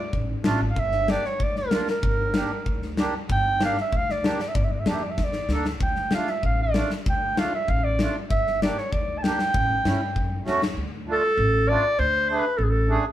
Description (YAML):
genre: klezmer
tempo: 96 BPM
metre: 2/4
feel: straight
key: G dorian sharp4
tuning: A4 = 440 Hz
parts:
  - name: warm clarinet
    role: melody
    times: 0.0-13.0 s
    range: G#4 to A5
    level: -25 LUFS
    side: right 1 dB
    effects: plate reverb
  - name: upright bass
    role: bass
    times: 0.1-12.9 s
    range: G1 to G2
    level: -28 LUFS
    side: equal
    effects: none
  - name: huge arena drum kit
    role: drums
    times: 0.1-10.8 s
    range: kick drum, snare drum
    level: -26 LUFS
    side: left 1 dB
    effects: none
  - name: accordion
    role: accompaniment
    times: 0.4-13.1 s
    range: A3 to A4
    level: -28 LUFS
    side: right 3 dB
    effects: none
room: moderate small room reverb, RT60 0.5 s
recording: heard from further back in the room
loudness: -21 LUFS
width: side -12 dB against mid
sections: 0.8-10.8 A section; 10.8-13.1 B section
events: speeding up 0.0-13.1; drum fill 5.2-5.8, 10.5-10.8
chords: 0.0 Dm; 0.8 Gm; 5.8 Dm; 8.3 Gm; 9.5 A7; 10.8 Dm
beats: 0.13 | 0.77 1.40 | 2.04 2.67 | 3.30 3.93 | 4.56 5.18 | 5.81 6.44 | 7.06 7.68 | 8.30 8.92 | 9.54 10.15 | 10.77 11.38 | 11.99 12.59